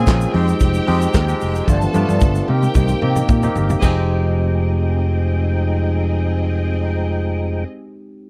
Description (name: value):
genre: disco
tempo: 112 BPM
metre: 4/4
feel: straight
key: F minor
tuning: A4 = 437 Hz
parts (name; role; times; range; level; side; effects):
- clear studio string section; second line; 0.0-7.6 s; C4 to A5; -32 LUFS; equal; none
- barky tine electric piano; accompaniment; 0.0-8.3 s; Ab3 to Ab4; -27 LUFS; equal; overdrive
- mellow electric guitar; accompaniment; 0.0-7.7 s; Ab3 to Eb5; -34 LUFS; equal; wah, lush chorus
- percussive tonewheel organ; sustained chords; 0.0-7.6 s; Db3 to G5; -28 LUFS; equal; chorus vibrato, slow rotary speaker
- fingered electric bass; bass; 0.0-7.6 s; F1 to C3; -20 LUFS; equal; none
- warm soul drum kit; drums; 0.1-4.0 s; crash cymbal, handclaps, hi-hat, kick drum, snare drum, toms; -20 LUFS; equal; none
- tube shaker; percussion; 0.1-4.1 s; none; -43 LUFS; equal; none
room: little or no reverb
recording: none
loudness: -18 LUFS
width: mono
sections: 0.0-3.8 A section; 3.8-8.1 B section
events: drum fill 1.7-3.8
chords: 0.3 Fm9; 1.7 G7; 2.5 Cm7; 3.8 Fm9